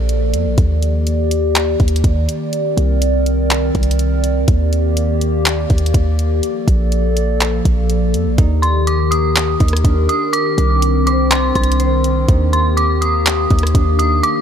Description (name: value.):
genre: hip hop, atmospheric cloud-rap.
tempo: 123 BPM.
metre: 4/4.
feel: half-time.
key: Eb lydian.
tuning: A4 = 438 Hz.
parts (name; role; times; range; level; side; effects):
warbly tape-like pad; sustained chords; 0.0-14.4 s; Eb3 to D5; -19 LUFS; left 2 dB; chorus, built-in reverb, sidechain pumping.
warm 808-style bass; bass; 0.0-14.2 s; Bb1 to F2; -16 LUFS; equal; none.
smooth R&B drum kit; drums; 0.1-14.3 s; handclaps, hi-hat, kick drum, rim click; -16 LUFS; equal; none.
concert harp; arpeggios; 8.4-14.4 s; Bb3 to Eb6; -25 LUFS; right 5 dB; low-pass filter, ping-pong delay.
dark detuned synth bell; melody; 8.6-14.4 s; C6 to Eb6; -19 LUFS; right 1 dB; chorus, low-pass filter, ping-pong delay.
room: little or no reverb.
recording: none.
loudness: -13 LUFS.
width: side -8 dB against mid.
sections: 0.0-8.4 A section; 8.4-14.4 B section.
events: none.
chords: 0.0 Bbmaj7; 0.6 Ebmaj7; 2.5 Cm9; 4.5 Ebmaj7; 6.4 Bbmaj7; 8.4 Ebmaj7; 10.3 Cm9; 12.3 Ebmaj7.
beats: 0.09 | 0.58 1.07 1.55 2.04 | 2.53 3.02 3.50 3.99 | 4.48 4.97 5.46 5.94 | 6.43 6.92 7.41 7.89 | 8.38 8.87 9.36 9.85 | 10.33 10.82 11.31 11.80 | 12.29 12.77 13.26 13.75 | 14.24.